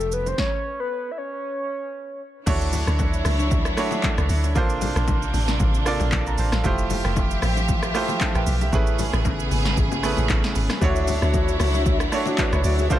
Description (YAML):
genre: amapiano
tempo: 115 BPM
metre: 4/4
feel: swing 55% on 16ths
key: unclear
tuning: A4 = 440 Hz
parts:
  - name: soft octave-layered synth lead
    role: melody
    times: 0.0-2.2 s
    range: A4 to E5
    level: -27 LUFS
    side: left 1 dB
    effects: chorus, digital delay
  - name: clear concert grand piano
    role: accompaniment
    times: 0.0-13.0 s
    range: G3 to Bb5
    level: -27 LUFS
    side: right 4 dB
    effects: none
  - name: warm studio string section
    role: sustained chords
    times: 0.0-13.0 s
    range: C3 to E5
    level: -28 LUFS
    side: equal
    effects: sidechain pumping
  - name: deep house drum kit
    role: drums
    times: 0.0-13.0 s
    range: crash cymbal, handclaps, hi-hat, kick drum, rim click, shaker, snare drum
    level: -24 LUFS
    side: equal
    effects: none
  - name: bongos and congas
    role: percussion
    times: 0.3-13.0 s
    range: none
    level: -32 LUFS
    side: left 7 dB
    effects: none
  - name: deep log drum bass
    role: bass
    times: 2.5-12.9 s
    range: F1 to D2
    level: -23 LUFS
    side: equal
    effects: none
  - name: mellow tonewheel organ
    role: stabs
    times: 10.8-12.9 s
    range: F#4 to E5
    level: -27 LUFS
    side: left 5 dB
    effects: chorus vibrato, stopped rotary speaker, digital delay
room: digital ambience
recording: none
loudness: -20 LUFS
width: side -12 dB against mid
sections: 0.0-2.5 A section; 2.5-13.0 B section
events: stop 0.4-2.5; drop 2.5-13.0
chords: 0.4 N.C.; 2.5 Dmaj9; 4.6 Bbmaj9; 6.6 Fmaj9; 8.7 Amaj9; 10.8 Dmaj9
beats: | 0.38 0.90 1.43 1.95 | 2.47 2.99 3.51 4.03 | 4.55 5.08 5.60 6.12 | 6.64 7.16 7.69 8.21 | 8.73 9.25 9.77 10.29 | 10.82 11.34 11.86 12.38 | 12.90